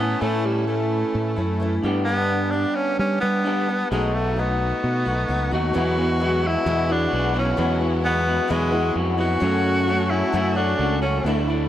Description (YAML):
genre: folk rock and heartland rock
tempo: 131 BPM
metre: 4/4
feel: straight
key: unclear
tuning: A4 = 441 Hz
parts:
  - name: breathy tenor saxophone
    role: melody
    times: 0.0-11.4 s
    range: G3 to F#4+22c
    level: -24 LUFS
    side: right 1 dB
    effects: none
  - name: picked old ladder-braced acoustic guitar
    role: accompaniment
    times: 0.0-11.7 s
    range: E2 to G4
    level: -28 LUFS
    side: left 4 dB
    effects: none
  - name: rich studio string section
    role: sustained chords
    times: 0.0-11.7 s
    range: G3 to C#5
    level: -34 LUFS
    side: equal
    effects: none
  - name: electric guitar through a small old amp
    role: riff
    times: 0.0-11.7 s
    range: E2 to A4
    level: -26 LUFS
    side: equal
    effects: none
  - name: fingered electric bass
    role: bass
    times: 0.0-11.7 s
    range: B1 to G3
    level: -24 LUFS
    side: equal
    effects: none
  - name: mellow reed electric piano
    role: accompaniment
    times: 5.8-11.7 s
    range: A3 to C#5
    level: -33 LUFS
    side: right 4 dB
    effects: none
room: light reverb, studio reverb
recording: none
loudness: -19 LUFS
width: side -11 dB against mid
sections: 0.0-5.7 A section; 5.7-11.7 B section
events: none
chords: 0.0 A; 1.8 G; 3.9 B7; 5.7 Eadd9; 9.4 F#m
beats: | 0.22 0.68 1.14 1.60 | 2.06 2.52 2.98 3.44 | 3.91 4.37 4.83 5.29 | 5.74 6.20 6.66 7.12 | 7.58 8.04 8.50 8.95 | 9.41 9.87 10.33 10.79 | 11.24